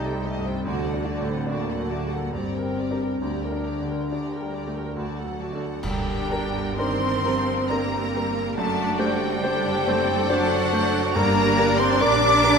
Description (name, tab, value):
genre	classical, romantic movement for piano and orchestra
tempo	69 BPM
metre	3/4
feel	rubato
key	G minor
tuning	A4 = 440 Hz
part	clear concert grand piano	melody	0.0-12.6 s	C2 to C5	-27 LUFS	equal	none
part	clear studio violin section	melody	0.0-12.6 s	F#5 to D6	-30 LUFS	left 2 dB	none
part	clear studio violin section	second line	0.0-12.6 s	F#4 to F#5	-32 LUFS	left 2 dB	none
part	rich studio viola section	accompaniment	0.0-12.6 s	D3 to Bb4	-30 LUFS	right 3 dB	none
part	warm French horn section	sustained chords	0.0-12.6 s	F#3 to F#4	-30 LUFS	left 2 dB	none
part	rich studio cello section	bass	0.0-12.6 s	D2 to D4	-31 LUFS	right 3 dB	none
part	rich studio double bass section	bass	0.0-12.6 s	F#1 to D2	-33 LUFS	right 3 dB	none
part	cymbal swell, clash cymbals and concert bass drum	percussion	3.2-7.6 s	none	-35 LUFS	equal	none
part	mellow hollow silver concert flute	second line	5.8-12.6 s	F#5 to D6	-31 LUFS	left 2 dB	none
part	dark trumpet	stabs	5.8-12.6 s	F#4 to D5	-29 LUFS	right 1 dB	none
part	timpani	percussion	11.2-12.4 s	G2	-31 LUFS	left 1 dB	none
room	wet concert hall reverb, RT60 1.9 s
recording	minimal, uncompressed stereo recording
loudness	-21 LUFS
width	side -6 dB against mid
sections	0.0-5.8 A section; 5.8-12.6 B section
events	band accent 5.8-6.8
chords	0.0 Am7b5/C; 0.7 D; 2.3 Gm; 3.2 Gm/D; 5.0 D; 5.8 Gm; 8.6 D7/F#; 11.2 Gm